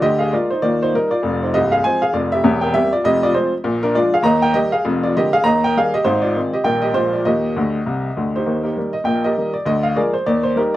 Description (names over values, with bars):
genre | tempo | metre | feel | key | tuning
jazz, stride piano | 199 BPM | 4/4 | swing 59% on 8ths | Eb major | A4 = 440 Hz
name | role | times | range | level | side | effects
warm upright piano | solo | 0.0-10.8 s | C1 to Bb5 | -15 LUFS | equal | none
room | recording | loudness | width
light reverb | recorded outdoors, with no room sound | -15 LUFS | side -14 dB against mid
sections
0.0-8.5 A section; 8.5-10.8 A section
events
upright piano fill 7.6-8.5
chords
0.0 Bb7/D; 0.6 Eb; 1.2 Fm; 2.4 C7/E; 3.0 Fm; 3.6 Bb7; 4.2 Eb; 4.9 Bb7/F; 5.5 Eb; 6.1 Ab; 6.7 Eb/Bb; 7.0 Bb7; 7.3 Eb; 9.7 Bb7/D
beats
| 0.02 0.32 0.62 0.93 | 1.23 1.53 1.83 2.14 | 2.44 2.74 3.04 3.34 | 3.65 3.95 4.25 4.55 | 4.85 5.15 5.45 5.75 | 6.05 6.36 6.66 6.96 | 7.26 7.56 7.86 8.16 | 8.46 8.76 9.06 9.37 | 9.67 9.97 10.27 10.57